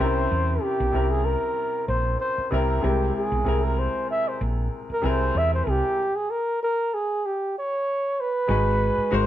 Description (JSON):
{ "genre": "lush 1970s-style soul", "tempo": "95 BPM", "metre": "4/4", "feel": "swing 54% on 16ths", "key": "unclear", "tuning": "A4 = 440 Hz", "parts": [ { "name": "breathy flugelhorn", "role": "melody", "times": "0.0-9.3 s", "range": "G4 to E5", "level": "-24 LUFS", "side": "right 1 dB", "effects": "none" }, { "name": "warm grand piano", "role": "accompaniment", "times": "0.0-9.3 s", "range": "C3 to B#4", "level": "-27 LUFS", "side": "left 3 dB", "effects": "none" }, { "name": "hollow-body short-scale fingered electric bass", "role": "bass", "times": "0.0-9.3 s", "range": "G#1 to E2", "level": "-25 LUFS", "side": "right 1 dB", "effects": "none" } ], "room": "moderate stone room reverb, RT60 0.9 s", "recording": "band playing live in one room", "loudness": "-22 LUFS", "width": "side -12 dB against mid", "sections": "0.0-8.5 A section", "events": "none", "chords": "0.0 C7; 2.8 C7b13; 6.0 N.C.; 8.5 G#m7" }